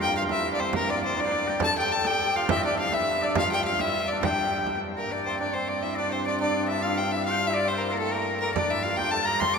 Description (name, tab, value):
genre	medieval dance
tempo	138 BPM (dotted quarters)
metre	6/8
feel	straight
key	G dorian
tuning	A4 = 440 Hz
part	clear fiddle	melody	0.0-9.6 s	A4 to D6	-26 LUFS	left 2 dB	none
part	bright shawm	second line	0.0-9.6 s	A4 to C6	-31 LUFS	left 4 dB	none
part	hammered dulcimer	second line	0.0-9.6 s	A3 to C5	-30 LUFS	right 3 dB	none
part	rich viola da gamba	drone	0.0-9.6 s	G2	-35 LUFS	equal	none
part	frame drum	percussion	0.3-5.0, 8.6-9.6 s	none	-32 LUFS	right 3 dB	none
room	wet cathedral reverb, RT60 5.1 s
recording	minimal, uncompressed stereo recording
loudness	-23 LUFS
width	side -5 dB against mid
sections	0.0-5.1 A section; 5.1-9.6 B section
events	none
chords	none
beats	0.30 | 0.74 1.18 | 1.61 2.05 | 2.49 2.93 | 3.36 3.80 | 4.23 4.67 | 5.10 5.54 | 5.97 6.40 | 6.83 7.27 | 7.70 8.13 | 8.56 8.99 | 9.42